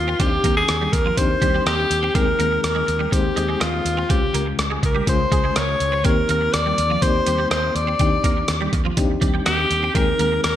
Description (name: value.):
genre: 1980s-style pop.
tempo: 123 BPM.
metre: 4/4.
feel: straight.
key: unclear.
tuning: A4 = 440 Hz.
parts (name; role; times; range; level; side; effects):
bright alto saxophone; melody; 0.0-10.6 s; F4 to D5; -21 LUFS; left 1 dB; none.
FM electric piano with tremolo; accompaniment; 0.0-10.6 s; Db3 to C5; -26 LUFS; left 4 dB; none.
fretless electric bass; bass; 0.0-10.6 s; Db2 to Eb2; -25 LUFS; equal; none.
twelve-string electric guitar; riff; 0.1-10.3 s; F3 to C4; -28 LUFS; right 5 dB; ensemble chorus, digital delay.
boom bap sampler-style drum kit; drums; 0.2-10.6 s; hi-hat, kick drum, rim click; -22 LUFS; equal; gated reverb.
room: wet plate reverb, RT60 1.0 s, digital ambience.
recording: bright 1980s-style digital production.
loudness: -17 LUFS.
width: side -11 dB against mid.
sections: 0.0-10.6 A section.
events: none.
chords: 0.2 Cmadd9/Eb; 2.1 Ab/Eb; 4.1 Db; 6.1 Eb6; 8.0 Cmadd9/Eb; 10.0 Ab/Eb.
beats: | 0.20 0.69 1.17 1.66 | 2.15 2.64 3.12 3.61 | 4.10 4.59 5.08 5.56 | 6.05 6.54 7.03 7.51 | 8.00 8.49 8.98 9.46 | 9.95 10.44.